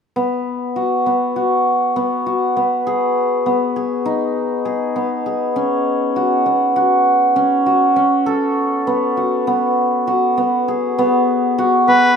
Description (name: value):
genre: contemporary instrumental, contemporary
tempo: 200 BPM (eighths)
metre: 9/8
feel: straight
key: B mixolydian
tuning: A4 = 441 Hz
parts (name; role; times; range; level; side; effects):
- hammered dulcimer; arpeggios; 0.2-12.2 s; B3 to A4; -15 LUFS; equal; none
- bright oboe; melody; 11.9-12.2 s; B4; -13 LUFS; left 2 dB; none
room: light reverb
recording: close, detailed microphones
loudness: -15 LUFS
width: side -6 dB against mid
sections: 0.2-11.0 A section; 11.0-12.2 B section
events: none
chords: 0.2 B5; 2.9 B6; 5.6 F#5; 8.3 B5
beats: | 0.16 0.46 0.76 1.06 1.36 1.66 1.96 2.26 2.56 | 2.86 3.16 3.46 3.76 4.06 4.36 4.66 4.96 5.26 | 5.57 5.87 6.17 6.47 6.77 7.07 7.37 7.67 7.97 | 8.27 8.57 8.87 9.17 9.47 9.77 10.07 10.37 10.67 | 10.97 11.28 11.57 11.88